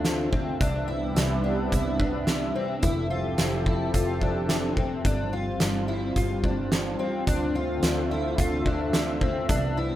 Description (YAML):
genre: dream pop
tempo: 108 BPM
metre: 4/4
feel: straight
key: unclear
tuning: A4 = 443 Hz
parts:
  - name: lush unison pad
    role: sustained chords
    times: 0.0-10.0 s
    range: C3 to E5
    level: -28 LUFS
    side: equal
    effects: chorus
  - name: fingerpicked twelve-string acoustic guitar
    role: arpeggios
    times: 0.0-10.0 s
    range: C4 to F4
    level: -31 LUFS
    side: left 2 dB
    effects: analog chorus, digital delay
  - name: vintage muted fingered electric bass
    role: bass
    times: 0.0-10.0 s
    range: F1 to D2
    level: -32 LUFS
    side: equal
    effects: none
  - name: oversized low-tuned drum kit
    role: drums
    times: 0.0-9.6 s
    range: hi-hat, kick drum, snare drum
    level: -28 LUFS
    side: equal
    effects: none
room: light reverb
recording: rough home demo mix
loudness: -23 LUFS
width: side -13 dB against mid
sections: 0.0-10.0 A section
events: none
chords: 0.0 Dm7; 0.6 Cmaj9; 2.8 Fmaj9; 5.0 G7sus4; 7.3 Dm7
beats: 0.05 | 0.60 1.16 1.72 2.27 | 2.83 3.38 3.94 4.49 | 5.05 5.61 6.16 6.72 | 7.27 7.83 8.38 8.94 | 9.49